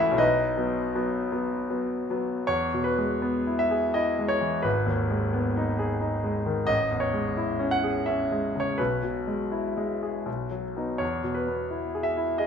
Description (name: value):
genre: classical, romantic character piece for solo piano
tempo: 78-90 BPM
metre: 3/4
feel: rubato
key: E major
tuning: A4 = 440 Hz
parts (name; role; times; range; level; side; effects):
- clear concert grand piano; solo; 0.0-12.5 s; G#1 to A5; -24 LUFS; left 1 dB; none
room: moderate recital hall reverb, RT60 1.5 s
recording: none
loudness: -24 LUFS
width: side -7 dB against mid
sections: 0.0-2.5 A section; 2.5-12.5 B section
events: none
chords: 0.2 B; 2.5 E; 4.7 G#m; 6.7 Amaj7; 8.8 E/B; 10.3 B; 11.0 E